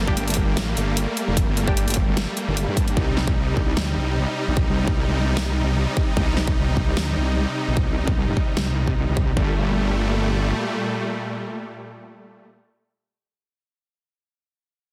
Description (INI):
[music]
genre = heavy wobble dubstep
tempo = 150 BPM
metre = 4/4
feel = swing 53% on 16ths, half-time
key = G minor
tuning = A4 = 440 Hz
[part]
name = supersaw chords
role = sustained chords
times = 0.0-12.5 s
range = Bb2 to Eb4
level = -28 LUFS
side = equal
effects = sidechain pumping
[part]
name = wobble bass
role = bass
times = 0.0-10.5 s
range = F1 to G2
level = -25 LUFS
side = equal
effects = chorus, overdrive
[part]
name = orchestra-hit-like synth stab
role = stabs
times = 0.1-1.8 s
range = G3 to G4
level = -33 LUFS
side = equal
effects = built-in reverb, cassette tape, digital delay
[part]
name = electronic kick drum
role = drums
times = 0.1-9.5 s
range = none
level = -25 LUFS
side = equal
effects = small room reverb
[part]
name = dubstep drum kit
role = drums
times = 0.2-8.7 s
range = hi-hat, snare drum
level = -30 LUFS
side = equal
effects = small room reverb
[sound]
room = light reverb, digital ambience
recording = dense, heavily limited modern master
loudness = -22 LUFS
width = mono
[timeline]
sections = 0.0-9.4 A section; 9.4-12.6 B section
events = none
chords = 0.0 Gmadd9; 3.0 Cm; 9.4 Gmadd9